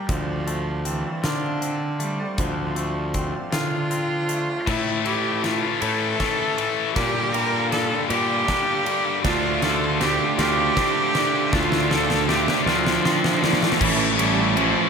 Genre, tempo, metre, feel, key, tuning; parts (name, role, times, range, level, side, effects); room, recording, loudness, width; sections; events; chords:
post-rock; 52 BPM (dotted quarters); 6/8; straight; D minor; A4 = 440 Hz
bright cello; melody; 0.0-14.9 s; D3 to Bb4; -25 LUFS; right 2 dB; slapback echo
hand-pumped harmonium; sustained chords; 0.0-14.9 s; Bb3 to A5; -34 LUFS; right 5 dB
twangy electric guitar; arpeggios; 0.0-13.8 s; A2 to G4; -31 LUFS; left 3 dB; spring reverb, slapback echo
fuzz fingered electric bass; bass; 0.1-14.7 s; A1 to D3; -28 LUFS; equal; overdrive
huge arena drum kit; drums; 0.1-14.7 s; crash cymbal, hi-hat, kick drum, ride cymbal, snare drum; -27 LUFS; equal
tight distorted guitar; riff; 4.7-14.9 s; G2 to E4; -24 LUFS; left 12 dB; distortion
sludgy distorted guitar; riff; 9.2-14.9 s; A2 to E4; -25 LUFS; right 14 dB; overdrive
light reverb, small room ambience; -19 LUFS; side -6 dB against mid
0.0-4.7 A section; 4.7-13.8 B section; 13.8-14.9 C section
build-up 4.7-13.8; drum fill 4.7-13.8
0.1 Dm7; 4.7 A; 7.0 Gm; 9.2 Dm7; 13.8 A